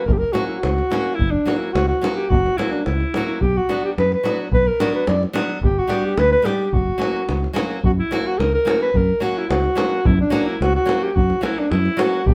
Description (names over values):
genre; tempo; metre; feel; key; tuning
balkan folk, Balkan wedding band; 108 BPM; 2/4; straight; F# phrygian dominant; A4 = 439 Hz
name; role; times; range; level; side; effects
dark alto saxophone; melody; 0.0-12.3 s; D4 to D5; -22 LUFS; equal; none
nylon-string guitar; accompaniment; 0.0-12.2 s; F#3 to G4; -28 LUFS; equal; none
fingered electric bass; bass; 0.1-12.3 s; F#1 to F#2; -24 LUFS; equal; none
davul; percussion; 0.1-12.3 s; none; -25 LUFS; equal; none
room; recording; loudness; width
moderate studio reverb, RT60 0.7 s; band playing live in one room; -19 LUFS; mono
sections
0.0-7.8 A section; 7.8-12.3 A section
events
none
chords
0.0 F#; 3.4 Bm; 5.6 G; 6.7 F#